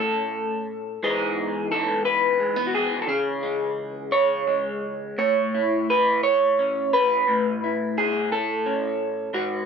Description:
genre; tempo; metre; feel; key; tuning
folk, solo fingerstyle acoustic guitar; 58 BPM (dotted quarters); 6/8; rubato; unclear; A4 = 440 Hz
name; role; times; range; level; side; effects
electric guitar through a small old amp; solo; 0.0-9.7 s; G#2 to C#5; -21 LUFS; equal; phaser
room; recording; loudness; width
moderate studio reverb, RT60 0.5 s; none; -21 LUFS; side -6 dB against mid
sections
0.0-9.7 A section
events
none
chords
0.0 A; 1.0 Emaj7/G#; 3.1 C#m; 5.2 Aadd9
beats
| 1.02 2.04 | 3.07 4.11 | 5.17 6.23 | 7.27 8.30 | 9.33

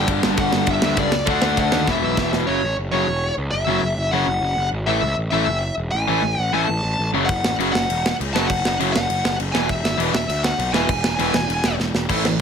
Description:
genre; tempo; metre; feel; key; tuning
punk rock; 200 BPM; 4/4; straight; A major; A4 = 439 Hz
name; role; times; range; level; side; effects
dark smooth lead guitar; melody; 0.0-11.7 s; C#5 to A5; -23 LUFS; left 1 dB; overdrive
cranked stack guitar; riff; 0.0-12.4 s; E2 to D4; -23 LUFS; left 17 dB; overdrive
distorted electric guitar; riff; 0.0-12.4 s; E2 to D4; -25 LUFS; right 17 dB; distortion
fuzz picked electric bass; bass; 0.0-12.4 s; E1 to D#2; -25 LUFS; equal; overdrive
tight metal drum kit; drums; 0.1-2.4, 7.3-12.3 s; crash cymbal, kick drum, ride cymbal, snare drum; -23 LUFS; right 1 dB; none
room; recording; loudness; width
light reverb; none; -18 LUFS; side -7 dB against mid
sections
0.0-2.5 A section; 2.5-12.1 B section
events
drum fill 1.9-2.5, 11.8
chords
0.0 G5; 1.3 D; 1.9 E5; 2.5 F#5; 4.9 A; 9.5 E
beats
| 0.08 0.38 0.68 0.98 | 1.28 1.58 1.88 2.18 | 2.48 2.78 3.08 3.38 | 3.68 3.98 4.28 4.58 | 4.88 5.18 5.48 5.78 | 6.08 6.38 6.68 6.99 | 7.29 7.59 7.89 8.19 | 8.49 8.79 9.09 9.39 | 9.69 9.99 10.29 10.59 | 10.89 11.19 11.49 11.79 | 12.09

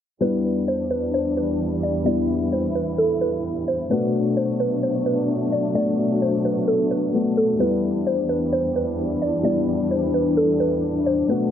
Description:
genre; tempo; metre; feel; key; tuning
hip hop; 130 BPM; 4/4; half-time; E minor; A4 = 441 Hz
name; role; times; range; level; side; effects
mallet-like synth pluck; melody; 0.2-11.5 s; A4 to D5; -24 LUFS; right 2 dB; chorus, analog delay
dark grand piano; accompaniment; 0.2-11.5 s; G3 to F#4; -24 LUFS; left 4 dB; none
dark symphonic string section; sustained chords; 0.2-11.5 s; E2 to E4; -24 LUFS; equal; none
riser; sound effects; 11.4-11.5 s; none; -38 LUFS; right 6 dB; none
room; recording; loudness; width
moderate echo chamber reverb, RT60 2.0 s, small room ambience; echo-heavy mix, low-pass filter, nothing above 8.0 kHz; -19 LUFS; side -9 dB against mid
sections
0.2-11.5 A section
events
filter sweep 0.2-11.5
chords
0.2 Em7; 3.9 Bm7; 7.6 Em7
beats
| 0.22 0.68 1.14 1.60 | 2.06 2.52 2.99 3.45 | 3.91 4.37 4.83 5.29 | 5.75 6.22 6.68 7.14 | 7.60 8.06 8.52 8.99 | 9.45 9.91 10.37 10.83 | 11.29

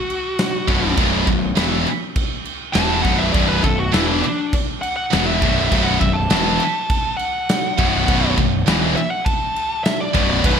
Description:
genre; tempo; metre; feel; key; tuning
heavy metal; 101 BPM; 4/4; straight; B minor; A4 = 439 Hz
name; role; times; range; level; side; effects
high-gain lead guitar; melody; 0.0-10.6 s; D4 to A5; -23 LUFS; left 1 dB; distortion, ping-pong delay
big rock drum kit; drums; 0.1-10.6 s; crash cymbal, kick drum, snare drum; -21 LUFS; equal; gated reverb
heavy high-gain guitar; riff; 0.7-10.6 s; B1 to E3; -22 LUFS; right 13 dB; distortion
high-gain distorted guitar; riff; 0.7-10.6 s; B1 to E3; -22 LUFS; left 11 dB; distortion
fuzz picked electric bass; bass; 0.7-10.6 s; B0 to E1; -22 LUFS; equal; overdrive
room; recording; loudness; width
light reverb, studio reverb; bright 1980s-style digital production; -16 LUFS; side -7 dB against mid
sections
0.0-10.6 A section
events
lead electric guitar solo 0.0-10.6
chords
0.0 B5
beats
0.39 | 0.98 1.57 2.16 2.76 | 3.35 3.94 4.53 5.12 | 5.71 6.31 6.90 7.49 | 8.08 8.67 9.26 9.85 | 10.44

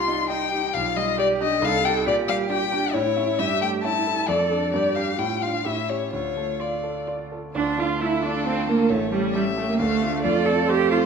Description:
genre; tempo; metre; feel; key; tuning
quick classical-period movement for piano quartet; 134 BPM; 3/4; straight; D minor; A4 = 439 Hz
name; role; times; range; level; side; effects
warm violin; melody; 0.0-11.1 s; F4 to C6; -24 LUFS; left 6 dB; none
rich cello; second line; 0.0-11.0 s; G3 to A4; -26 LUFS; right 6 dB; none
clear concert grand piano; accompaniment; 0.0-11.1 s; A1 to Eb5; -27 LUFS; right 1 dB; none
rich viola; accompaniment; 0.0-11.1 s; G3 to A4; -30 LUFS; right 4 dB; none
room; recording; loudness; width
wet recital hall reverb, RT60 1.4 s; minimal, uncompressed stereo recording; -21 LUFS; side -6 dB against mid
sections
0.0-7.6 A section; 7.6-11.1 B section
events
none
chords
0.0 Cm; 0.7 G7/B; 1.6 Cm; 2.1 Gm/Bb; 3.0 A; 3.4 A7/G; 4.3 Dm/F; 4.7 Gm; 5.2 Dm/A; 5.7 A7; 6.1 Dm; 8.9 A7; 9.8 Dm; 10.2 F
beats
0.30 | 0.74 1.19 1.62 | 2.07 2.50 2.95 | 3.40 3.85 4.29 | 4.74 5.19 5.65 | 6.13 6.60 7.08 | 7.55 8.01 8.46 | 8.90 9.35 9.79 | 10.23 10.68

